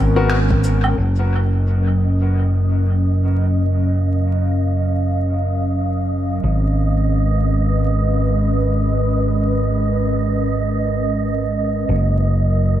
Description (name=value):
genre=ambient dub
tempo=free time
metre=none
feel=none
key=unclear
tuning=A4 = 440 Hz
part: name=airy breathy pad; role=sustained chords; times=0.0-12.8 s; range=F#3 to E#5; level=-22 LUFS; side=right 1 dB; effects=chorus
part: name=fingered electric bass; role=bass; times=0.0-12.8 s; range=F#1 to G#1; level=-17 LUFS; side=equal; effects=none
part: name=finger snaps, shaker and woodblock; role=drums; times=0.3-1.0 s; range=none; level=-28 LUFS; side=right 1 dB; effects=dub echo
part: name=electronic kick drum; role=drums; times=0.5-0.6 s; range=none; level=-21 LUFS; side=equal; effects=none
part: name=wind-like tuned noise texture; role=texture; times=1.5-12.8 s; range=D#5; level=-27 LUFS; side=right 7 dB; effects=built-in reverb
room=small room ambience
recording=echo-heavy mix, vinyl crackle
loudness=-16 LUFS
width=side -12 dB against mid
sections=1.0-12.8 A section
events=band accent 0.3-0.6; filter sweep on analog synth pad 1.0-12.8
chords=0.0 G#m9; 1.0 F#maj7; 6.4 G#madd9; 11.9 F#